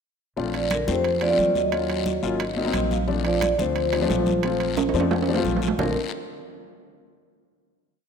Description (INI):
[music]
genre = Afro-Cuban jazz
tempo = 177 BPM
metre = 4/4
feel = straight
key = Bb major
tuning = A4 = 440 Hz
[part]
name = warm baby grand piano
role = accompaniment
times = 0.4-5.9 s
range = F3 to F5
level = -27 LUFS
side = left 4 dB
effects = none
[part]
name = upright bass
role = bass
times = 0.4-5.9 s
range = Ab1 to F2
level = -29 LUFS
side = right 1 dB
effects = none
[part]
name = congas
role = percussion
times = 0.4-5.9 s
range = none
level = -33 LUFS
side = equal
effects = none
[part]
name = guiro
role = percussion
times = 0.4-5.9 s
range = none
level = -36 LUFS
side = left 10 dB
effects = none
[part]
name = timbales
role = percussion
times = 0.5-5.9 s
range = none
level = -29 LUFS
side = right 8 dB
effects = none
[part]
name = vibraphone with medium hard mallets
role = melody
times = 0.6-5.9 s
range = Bb4 to Eb5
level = -26 LUFS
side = left 1 dB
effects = none
[part]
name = breathy trombone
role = second line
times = 0.6-5.9 s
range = D3 to Gb3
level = -30 LUFS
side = right 5 dB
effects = none
[sound]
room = moderate lush hall reverb, RT60 2.3 s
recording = rough home demo mix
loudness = -21 LUFS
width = side -6 dB against mid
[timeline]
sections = 0.4-5.8 A section; 5.8-7.1 final chord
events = grand piano fill 2.4-3.1; drum fill 4.8-5.8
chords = 0.4 Bbmaj9; 1.7 Ebm7; 2.4 Ab9; 3.1 Bbmaj9